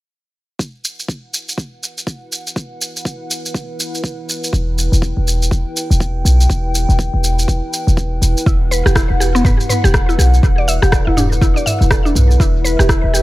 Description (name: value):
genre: afro house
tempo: 122 BPM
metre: 4/4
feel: swing 60% on 16ths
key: E minor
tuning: A4 = 436 Hz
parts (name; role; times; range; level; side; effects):
- dark analog pad; sustained chords; 0.6-13.2 s; E4 to G5; -24 LUFS; left 1 dB; chorus, sidechain pumping
- afro-pop drum kit; drums; 0.6-13.2 s; rim click, shaker, toms; -20 LUFS; equal; dub echo
- electronic kick drum; drums; 0.6-13.0 s; none; -16 LUFS; equal; high-pass filter on kick
- warm 808-style bass; bass; 4.5-13.2 s; E1 to B1; -14 LUFS; equal; sidechain pumping
- mallet-like synth pluck; arpeggios; 8.5-13.2 s; B3 to E5; -19 LUFS; equal; chorus, sidechain pumping, analog delay
room: digital ambience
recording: echo-heavy mix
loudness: -13 LUFS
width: side -17 dB against mid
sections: 0.6-8.5 A section; 8.5-13.2 B section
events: none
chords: 0.6 Em; 8.5 Em7